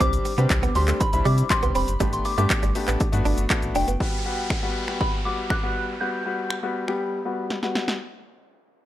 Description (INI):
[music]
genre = dance-pop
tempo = 120 BPM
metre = 4/4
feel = straight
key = G major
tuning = A4 = 440 Hz
[part]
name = soft synth bell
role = melody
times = 0.0-7.7 s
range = G5 to G6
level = -29 LUFS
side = equal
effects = chorus, phaser, low-pass filter
[part]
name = bright grand piano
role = accompaniment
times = 0.0-7.9 s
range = G3 to G4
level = -28 LUFS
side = left 3 dB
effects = sidechain pumping, low-pass filter
[part]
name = direct-recorded clean electric guitar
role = riff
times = 0.0-4.0 s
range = G3 to D4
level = -28 LUFS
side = right 6 dB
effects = analog chorus
[part]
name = sub bass with octave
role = bass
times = 0.0-4.0 s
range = E1 to C3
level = -23 LUFS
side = equal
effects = sidechain pumping
[part]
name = house drum kit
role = drums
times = 0.0-8.0 s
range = finger snaps, handclaps, hi-hat, kick drum, shaker, snare drum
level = -25 LUFS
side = equal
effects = none
[part]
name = downlifter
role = sound effects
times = 4.0-8.0 s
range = none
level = -35 LUFS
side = equal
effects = none
[sound]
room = digital ambience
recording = dry, gritty hardware recording, transformer saturation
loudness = -21 LUFS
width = side -13 dB against mid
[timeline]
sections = 0.0-4.0 A section; 4.0-8.0 B section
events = filter sweep 4.0-8.0; drum fill 7.5-8.0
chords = 0.0 Csus2; 2.0 Gadd9; 4.0 Gmaj7